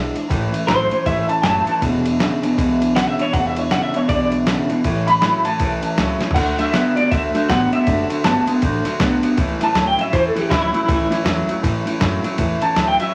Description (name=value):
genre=rockabilly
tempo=159 BPM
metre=4/4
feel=swing 61% on 8ths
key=A major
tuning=A4 = 444 Hz
part: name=electric guitar through a small old amp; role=melody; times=0.0-13.1 s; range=E4 to B5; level=-22 LUFS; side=equal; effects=tremolo
part: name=picked steel-string acoustic guitar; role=accompaniment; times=0.0-13.1 s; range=E2 to F#4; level=-28 LUFS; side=equal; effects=none
part: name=upright bass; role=bass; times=0.0-13.0 s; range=E1 to A2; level=-29 LUFS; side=equal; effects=none
part: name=dusty soul sampler-style drum kit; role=drums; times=0.2-13.1 s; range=crash cymbal, kick drum, ride cymbal, snare drum, toms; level=-25 LUFS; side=equal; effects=none
part: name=electric guitar through a small old amp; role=riff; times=0.3-13.1 s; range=E2 to B3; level=-23 LUFS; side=equal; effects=none
room=light reverb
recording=vinyl crackle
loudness=-18 LUFS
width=mono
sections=0.0-6.4 A section; 6.4-13.1 B section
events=clean electric guitar solo 0.0-6.4; drum fill 6.2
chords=0.3 A; 1.8 E7; 4.8 A; 6.4 D; 9.4 A